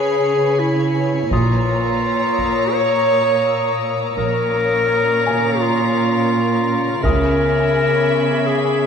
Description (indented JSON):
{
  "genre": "cinematic, suspense film score",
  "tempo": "84 BPM",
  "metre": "4/4",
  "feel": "straight",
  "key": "Bb phrygian",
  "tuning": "A4 = 440 Hz",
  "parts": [
    { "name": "muted studio violin section", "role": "melody", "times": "0.0-8.9 s", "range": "Bb5 to Cb6", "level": "-31 LUFS", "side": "right 1 dB", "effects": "none" },
    { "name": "bright clarinet", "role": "second line", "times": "0.0-8.9 s", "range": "Fb4 to Db5", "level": "-18 LUFS", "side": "left 2 dB", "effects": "none" },
    { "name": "muted symphonic violin section", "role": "second line", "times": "0.0-8.9 s", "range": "Db5 to Bb5", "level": "-26 LUFS", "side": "left 1 dB", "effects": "none" },
    { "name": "icy glass pad", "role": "sustained chords", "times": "0.0-8.9 s", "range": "Cb4 to Ab5", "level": "-24 LUFS", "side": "right 1 dB", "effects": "chorus, built-in reverb" },
    { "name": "muted studio cello section", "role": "bass", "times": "0.0-8.9 s", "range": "Bb2 to Db3", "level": "-22 LUFS", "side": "right 4 dB", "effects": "none" },
    { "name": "felt-muted upright piano", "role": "texture", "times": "0.0-8.9 s", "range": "Ab5 to Eb6", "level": "-30 LUFS", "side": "left 1 dB", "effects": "none" },
    { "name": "muted studio double bass section", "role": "bass", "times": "1.3-7.7 s", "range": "Bb1 to Db2", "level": "-22 LUFS", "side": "right 2 dB", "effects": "none" },
    { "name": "solo taiko drums", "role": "drums", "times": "1.3-2.7, 7.0-8.4 s", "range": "none", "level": "-25 LUFS", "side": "equal", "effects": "none" },
    { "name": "muted studio violin section", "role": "texture", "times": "1.3-8.9 s", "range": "Db6 to Ab6", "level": "-31 LUFS", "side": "left 3 dB", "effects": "none" }
  ],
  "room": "moderate scoring stage reverb, RT60 2.2 s",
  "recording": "none",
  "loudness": "-15 LUFS",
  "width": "side -7 dB against mid",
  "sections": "0.0-8.9 A section",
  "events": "none",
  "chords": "0.0 Dbm7; 1.3 Bbm; 7.0 Dbm7",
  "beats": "0.60 | 1.31 2.03 2.74 3.46 | 4.17 4.89 5.60 6.32 | 7.03 7.74 8.46"
}